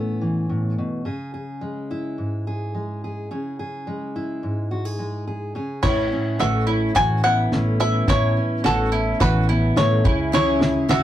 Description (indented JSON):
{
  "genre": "indie folk with a building arrangement",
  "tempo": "107 BPM",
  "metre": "4/4",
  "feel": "straight",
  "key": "unclear",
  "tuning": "A4 = 439 Hz",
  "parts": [
    { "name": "fingerpicked steel-string acoustic guitar", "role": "accompaniment", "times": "0.0-11.0 s", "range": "G#2 to B4", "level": "-24 LUFS", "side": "equal", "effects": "none" },
    { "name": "bluegrass banjo", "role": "melody", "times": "5.8-11.0 s", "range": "A4 to G#5", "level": "-22 LUFS", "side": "left 1 dB", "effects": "none" },
    { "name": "mandolin", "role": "arpeggios", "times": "5.8-11.0 s", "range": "E4 to F#4", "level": "-25 LUFS", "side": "right 3 dB", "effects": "none" },
    { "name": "upright bass", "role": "bass", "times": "5.8-11.0 s", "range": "A1 to C#2", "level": "-24 LUFS", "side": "equal", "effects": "none" },
    { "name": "cloth-damped thuddy drum kit", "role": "drums", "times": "5.8-11.0 s", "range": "crash cymbal, kick drum, snare drum", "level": "-22 LUFS", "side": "equal", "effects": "none" },
    { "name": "felt-muted upright piano", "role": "accompaniment", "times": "10.3-11.0 s", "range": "C#2 to E5", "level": "-30 LUFS", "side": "left 2 dB", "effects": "none" },
    { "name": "picked twelve-string acoustic guitar", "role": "accompaniment", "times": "10.3-11.0 s", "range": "C#3 to G#4", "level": "-26 LUFS", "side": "left 2 dB", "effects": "none" }
  ],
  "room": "wet booth ambience, RT60 0.2 s",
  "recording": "rough rehearsal-room recording, warm saturation",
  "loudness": "-19 LUFS",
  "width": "side -12 dB against mid",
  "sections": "0.0-5.8 A section; 5.8-11.0 B section",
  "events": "build-up 5.8-11.0; drum fill 5.8-11.0",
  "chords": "0.0 Aadd9; 1.1 C#m; 5.8 Aadd9; 10.1 C#m"
}